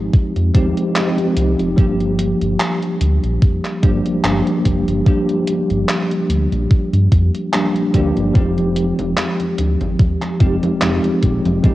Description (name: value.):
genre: vaporwave.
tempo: 73 BPM.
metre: 4/4.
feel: swing 55% on 16ths.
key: unclear.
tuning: A4 = 439 Hz.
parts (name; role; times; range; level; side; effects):
bell-like tine electric piano; accompaniment; 0.0-11.7 s; F3 to G4; -18 LUFS; equal; fast stereo tremolo, lush chorus, cassette tape, tape echo.
chorused synth bass; bass; 0.0-11.6 s; Eb1 to G2; -19 LUFS; equal; tube saturation.
electronic kick drum; drums; 0.1-11.7 s; none; -14 LUFS; equal; overdrive, cassette tape.
gated 80s digital drum machine; drums; 0.1-11.7 s; congas, handclaps, hi-hat; -23 LUFS; equal; gated reverb, overdrive, cassette tape.
room: light reverb.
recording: home recording on cassette, nothing above 11.0 kHz.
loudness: -14 LUFS.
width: side -16 dB against mid.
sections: 0.0-11.7 A section.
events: none.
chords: 0.0 Fm7; 1.8 Gm7; 8.4 Fm7.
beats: 0.13 0.95 | 1.78 2.60 3.42 4.24 | 5.07 5.89 6.71 7.53 | 8.35 9.17 10.00 10.82 | 11.64.